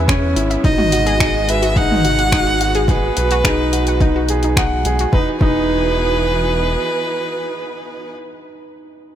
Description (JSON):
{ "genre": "piano and strings electronica", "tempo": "107 BPM", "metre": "4/4", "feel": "straight", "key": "E major", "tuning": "A4 = 440 Hz", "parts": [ { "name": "rich studio string section", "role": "sustained chords", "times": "0.0-8.1 s", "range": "C#3 to E5", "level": "-26 LUFS", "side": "right 2 dB", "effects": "sidechain pumping" }, { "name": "warm grand piano", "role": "riff", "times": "0.0-9.2 s", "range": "C#4 to F#5", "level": "-21 LUFS", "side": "right 1 dB", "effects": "tape echo" }, { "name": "round analog bass", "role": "bass", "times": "0.0-6.8 s", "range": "E1 to E2", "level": "-20 LUFS", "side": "equal", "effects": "sidechain pumping" }, { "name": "analog pluck", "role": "arpeggios", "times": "0.1-5.6 s", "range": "D#4 to F#5", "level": "-26 LUFS", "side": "left 3 dB", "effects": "chorus, sidechain pumping, tape echo" }, { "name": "deep house drum kit", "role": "drums", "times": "0.1-5.1 s", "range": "finger snaps, hi-hat, toms", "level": "-22 LUFS", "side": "equal", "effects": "none" }, { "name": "electronic kick drum", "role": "drums", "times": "0.1-5.6 s", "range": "none", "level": "-17 LUFS", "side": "equal", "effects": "none" }, { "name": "rich violin", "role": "melody", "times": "0.6-8.1 s", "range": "B4 to F#5", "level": "-21 LUFS", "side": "right 1 dB", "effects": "tape echo" } ], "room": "light reverb, digital ambience", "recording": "none", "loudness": "-14 LUFS", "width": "side -10 dB against mid", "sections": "0.0-5.1 A section; 5.1-7.4 B section", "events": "drop 0.0-5.1", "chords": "0.0 C#m7; 0.6 G#m7; 5.1 Emaj7" }